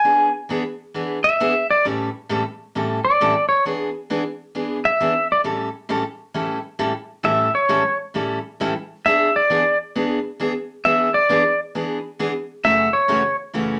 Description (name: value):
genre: country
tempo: 133 BPM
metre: 4/4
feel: swing 68% on 8ths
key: E mixolydian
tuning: A4 = 441 Hz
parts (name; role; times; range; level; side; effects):
- pedal steel guitar; melody; 0.0-13.4 s; C#5 to G#5; -18 LUFS; equal; none
- picked steel-string acoustic guitar; accompaniment; 0.0-13.8 s; F#2 to A4; -26 LUFS; equal; none
room: wet small room reverb, RT60 0.5 s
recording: none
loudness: -21 LUFS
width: mono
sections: 0.0-13.8 A section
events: pedal steel guitar solo 0.0-13.8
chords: 0.0 E7; 1.9 A7; 3.7 E7; 5.5 A7; 9.0 E7; 12.6 F#m7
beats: | 0.05 0.50 0.95 1.40 | 1.85 2.30 2.75 3.20 | 3.65 4.10 4.55 5.00 | 5.45 5.90 6.35 6.80 | 7.25 7.70 8.15 8.60 | 9.05 9.50 9.95 10.39 | 10.85 11.29 11.74 12.19 | 12.64 13.09 13.54